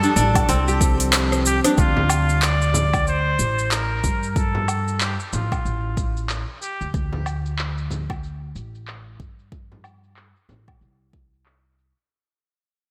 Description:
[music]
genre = organic downtempo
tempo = 93 BPM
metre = 4/4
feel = swing 59% on 16ths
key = D minor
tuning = A4 = 440 Hz
[part]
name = trumpet with straight mute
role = melody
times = 0.0-6.9 s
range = F4 to D5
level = -28 LUFS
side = equal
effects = tape echo
[part]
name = warm analog pad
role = sustained chords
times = 0.0-1.7 s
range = F3 to G4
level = -33 LUFS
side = equal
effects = chorus, sidechain pumping
[part]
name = kora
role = arpeggios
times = 0.0-3.3 s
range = C4 to A4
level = -25 LUFS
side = equal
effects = tape echo, slapback echo
[part]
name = afro-pop drum kit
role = drums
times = 0.0-12.1 s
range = handclaps, hi-hat, rim click, shaker, woodblock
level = -27 LUFS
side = equal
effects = overdrive, low-pass filter on hats, low-pass filter on snare, low-pass filter on perc, low-pass filter on room
[part]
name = twinkling granular texture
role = texture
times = 0.0-1.8 s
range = G3 to G4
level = -39 LUFS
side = equal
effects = none
[part]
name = upright bass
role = bass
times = 0.2-11.9 s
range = A1 to G2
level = -26 LUFS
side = equal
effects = none
[part]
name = frame drum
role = percussion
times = 0.2-10.6 s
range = none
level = -33 LUFS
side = equal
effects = none
[part]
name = electronic kick drum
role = drums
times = 0.4-11.3 s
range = none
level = -25 LUFS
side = equal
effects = overdrive
[sound]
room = moderate lush hall reverb, RT60 2.8 s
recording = big arena sound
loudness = -21 LUFS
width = mono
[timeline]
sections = 0.0-1.8 A section; 1.8-12.1 B section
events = drum fill 1.1-1.8; fade-out 1.8-12.1; filter sweep on drum 1.8-12.1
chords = 0.0 Dm7; 1.8 D7(no3)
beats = 0.49 1.13 | 1.78 2.42 3.07 3.71 | 4.36 5.00 5.65 6.29 | 6.94 7.58 8.23 8.87 | 9.52 10.16 10.81 11.45

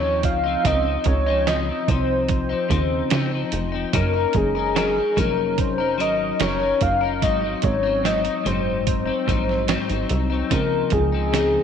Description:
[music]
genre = indie pop, bedroom pop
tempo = 73 BPM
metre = 4/4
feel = straight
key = Db major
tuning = A4 = 440 Hz
[part]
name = soft octave-layered synth lead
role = melody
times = 0.0-11.6 s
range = Ab4 to F5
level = -23 LUFS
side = left 1 dB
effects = analog chorus
[part]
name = clean electric guitar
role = accompaniment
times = 0.0-11.6 s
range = Ab2 to Bb4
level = -25 LUFS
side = left 7 dB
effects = analog chorus, vibrato effect
[part]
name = plucky analog bass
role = bass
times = 0.0-11.6 s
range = F1 to Eb2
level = -25 LUFS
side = right 1 dB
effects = none
[part]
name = lo-fi sampler-style drum kit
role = drums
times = 0.2-11.5 s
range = hi-hat, kick drum, snare drum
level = -25 LUFS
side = right 5 dB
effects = none
[sound]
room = moderate echo chamber reverb, RT60 2.3 s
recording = 1960s-style stereo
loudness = -19 LUFS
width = side -8 dB against mid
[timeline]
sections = 0.0-11.6 A section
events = none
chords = 0.0 Dbmaj9; 3.9 Gb6; 7.2 Ab7; 10.5 Dbmaj9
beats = | 0.65 1.47 2.29 3.11 | 3.93 4.76 5.58 6.40 | 7.22 8.04 8.87 9.69 | 10.51 11.33

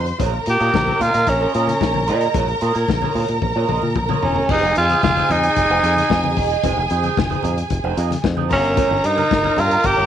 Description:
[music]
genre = disco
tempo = 112 BPM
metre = 4/4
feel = straight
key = F minor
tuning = A4 = 435 Hz
[part]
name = warm studio violin section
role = second line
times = 0.0-10.1 s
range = Ab4 to C6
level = -22 LUFS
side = right 2 dB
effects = none
[part]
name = electric guitar at the edge of break-up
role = accompaniment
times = 0.0-10.1 s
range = Eb4 to Eb5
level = -27 LUFS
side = right 14 dB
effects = wah
[part]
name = fingered electric bass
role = bass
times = 0.0-10.1 s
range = E1 to Bb2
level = -22 LUFS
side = equal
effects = none
[part]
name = vintage drum kit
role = drums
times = 0.1-10.0 s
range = crash cymbal, hi-hat, kick drum, snare drum, toms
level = -24 LUFS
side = left 4 dB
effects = none
[part]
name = congas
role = percussion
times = 0.2-10.1 s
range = none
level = -29 LUFS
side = left 7 dB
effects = none
[part]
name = raspy tenor saxophone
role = melody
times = 0.5-10.1 s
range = Db4 to G4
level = -18 LUFS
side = equal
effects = slapback echo
[sound]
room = light reverb, studio reverb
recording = 1960s-style stereo with parts hard left and right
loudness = -16 LUFS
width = side -10 dB against mid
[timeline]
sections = 0.0-4.5 A section; 4.5-10.1 B section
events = drum fill 3.4-4.5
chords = 0.2 Bbm7; 4.5 Fm7; 8.5 Gm7b5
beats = | 0.20 0.74 1.27 1.81 | 2.35 2.88 3.42 3.96 | 4.49 5.03 5.57 6.10 | 6.63 7.17 7.71 8.24 | 8.78 9.31 9.85

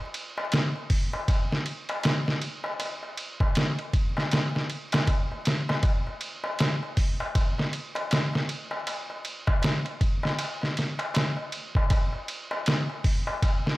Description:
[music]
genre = trip hop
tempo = 79 BPM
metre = 4/4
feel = swing 60% on 16ths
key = none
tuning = none
[part]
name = darbuka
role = percussion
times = 0.0-13.8 s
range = none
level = -34 LUFS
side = left 1 dB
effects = none
[part]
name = trip hop sampler-style drum kit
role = drums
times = 0.1-13.8 s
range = hi-hat, kick drum, ride cymbal, snare drum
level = -26 LUFS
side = equal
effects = none
[sound]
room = little or no reverb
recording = vinyl crackle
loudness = -25 LUFS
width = side -19 dB against mid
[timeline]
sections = 0.0-13.8 A section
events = none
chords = none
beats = 0.53 1.28 2.04 | 2.80 3.56 4.32 5.08 | 5.84 6.60 7.36 8.12 | 8.88 9.64 10.40 11.16 | 11.92 12.68 13.44

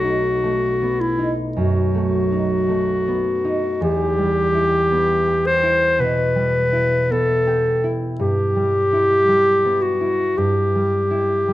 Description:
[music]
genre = classical, romantic duo for clarinet and harp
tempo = 54 BPM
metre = 4/4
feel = rubato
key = E minor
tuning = A4 = 442 Hz
[part]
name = clear clarinet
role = melody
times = 0.0-11.5 s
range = E4 to C5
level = -18 LUFS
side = left 1 dB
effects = none
[part]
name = concert harp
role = accompaniment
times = 0.0-11.5 s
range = B1 to G4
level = -22 LUFS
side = right 1 dB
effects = none
[sound]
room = light reverb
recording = close, detailed microphones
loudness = -16 LUFS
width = side -15 dB against mid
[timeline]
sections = 0.0-11.5 A section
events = none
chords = 0.0 B7; 3.8 Em; 8.2 Em/G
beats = 0.44 1.58 2.71 | 3.83 4.92 6.01 7.11 | 8.20 9.28 10.38 11.48

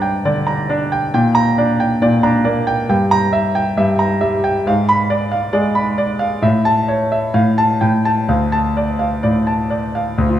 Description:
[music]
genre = classical, virtuoso piano study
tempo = 125-139 BPM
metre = 4/4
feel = rubato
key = D minor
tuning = A4 = 441 Hz
[part]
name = clear concert grand piano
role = solo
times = 0.0-10.4 s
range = D2 to B5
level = -14 LUFS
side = equal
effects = none
[sound]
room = moderate recital hall reverb, RT60 1.4 s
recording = minimal, uncompressed stereo recording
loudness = -14 LUFS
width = side -11 dB against mid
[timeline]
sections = 0.0-10.2 A section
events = none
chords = 0.0 Gm; 1.1 Gm/Bb; 2.9 Edim/G; 4.7 G#dim7; 6.4 A; 7.3 F/A; 7.8 Gsus2/A; 8.3 Dm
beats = 0.24 0.69 | 1.14 1.58 2.02 2.46 | 2.90 3.34 3.79 4.23 | 4.67 5.11 5.55 5.99 | 6.44 6.89 7.34 7.81 | 8.28 8.76 9.23 9.70 | 10.18

